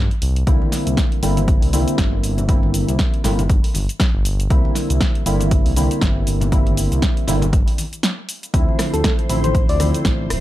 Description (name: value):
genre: deep house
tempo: 119 BPM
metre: 4/4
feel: swing 57% on 16ths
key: unclear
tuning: A4 = 440 Hz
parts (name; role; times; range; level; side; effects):
- smooth synth bass; bass; 0.0-10.4 s; D1 to D2; -20 LUFS; equal; tube saturation, sidechain pumping
- punchy analog drum machine; drums; 0.1-10.4 s; hi-hat, rim click, shaker, snare drum; -24 LUFS; equal; overdrive
- percussive organ stab; stabs; 0.5-10.4 s; D3 to E4; -22 LUFS; equal; ensemble chorus, sidechain pumping, analog delay
- electronic kick drum; drums; 0.5-10.2 s; none; -18 LUFS; equal; overdrive
- congas; percussion; 0.6-9.9 s; none; -28 LUFS; left 2 dB; none
- soft string machine; texture; 8.5-10.4 s; C5 to C6; -33 LUFS; left 1 dB; ensemble chorus, sidechain pumping
- soft struck synth lead; melody; 8.9-9.9 s; A4 to D5; -25 LUFS; left 3 dB; chorus, tape echo
room: little or no reverb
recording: none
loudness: -15 LUFS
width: side -14 dB against mid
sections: 0.0-10.4 A section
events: break 8.0-8.5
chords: 0.2 C9; 8.5 Dm9